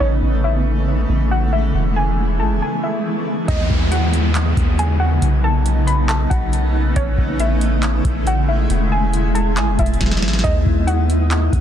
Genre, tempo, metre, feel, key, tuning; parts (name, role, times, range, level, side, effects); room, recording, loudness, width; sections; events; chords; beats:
hip hop, atmospheric cloud-rap; 138 BPM; 4/4; half-time; A lydian; A4 = 444 Hz
warbly dusty pluck; melody; 0.0-11.6 s; C#5 to B5; -25 LUFS; left 1 dB; chorus, low-pass filter, ping-pong delay
granular cloud pad; sustained chords; 0.0-11.6 s; C#3 to D#4; -21 LUFS; equal; built-in reverb, sidechain pumping
long sustained 808-style bass; bass; 0.0-11.6 s; E1 to D#2; -18 LUFS; equal
swell and downlifter; sound effects; 2.3-7.0 s; -28 LUFS; equal
booming analog drum machine; drums; 3.5-11.6 s; handclaps, hi-hat, kick drum, snare drum; -20 LUFS; equal; vintage 12-bit sampler grit
little or no reverb; dense, heavily limited modern master; -15 LUFS; side -10 dB against mid
0.0-3.5 A section; 3.5-11.6 B section
swell 2.3-3.5; break 2.6-3.5; drum fill 10.0-10.4
0.0 Amaj7; 1.7 Emaj7; 3.5 D#m7; 5.2 B9; 7.0 Amaj7; 8.7 Emaj7; 10.4 D#m7
| 0.01 0.44 0.88 1.31 | 1.74 2.18 2.61 3.05 | 3.48 3.92 4.35 4.79 | 5.22 5.66 6.09 6.53 | 6.96 7.40 7.83 8.27 | 8.70 9.14 9.57 10.01 | 10.44 10.88 11.31